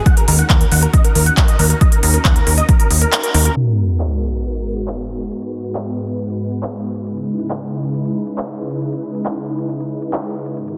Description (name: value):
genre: uplifting trance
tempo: 137 BPM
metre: 4/4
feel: straight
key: G# minor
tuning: A4 = 440 Hz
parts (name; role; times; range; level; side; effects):
- big supersaw lead; melody; 0.0-3.5 s; A#4 to F#5; -24 LUFS; equal; phaser, sidechain pumping, low-pass filter, tape echo
- supersaw pad; sustained chords; 0.0-10.8 s; G#2 to B4; -26 LUFS; equal; phaser, sidechain pumping, low-pass filter
- big-room dance drum kit; drums; 0.1-10.8 s; crash cymbal, handclaps, hi-hat; -22 LUFS; equal; overdrive
- electronic kick drum; drums; 0.1-2.8 s; none; -15 LUFS; equal; overdrive
- plucky analog bass; bass; 0.3-3.5 s; D#2; -17 LUFS; equal; tube saturation, sidechain pumping
- sub drop; sound effects; 3.6-5.3 s; none; -21 LUFS; equal; none
room: light reverb, digital ambience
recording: dense, heavily limited modern master, low-pass filter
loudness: -17 LUFS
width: mono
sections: 0.0-3.6 A section; 3.6-10.8 B section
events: kick drops out 3.1-3.6; band accent 3.1; impact 3.6-5.3; filter sweep on supersaw synth 3.6-10.8; filter sweep 3.6-10.8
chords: 0.1 D#m7; 3.6 G#m7; 7.1 C#m7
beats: | 0.06 0.50 0.94 1.37 | 1.81 2.25 2.69 3.12 | 3.56 4.00 4.44 4.88 | 5.32 5.75 6.19 6.63 | 7.07 7.50 7.94 8.38 | 8.82 9.26 9.69 10.13 | 10.57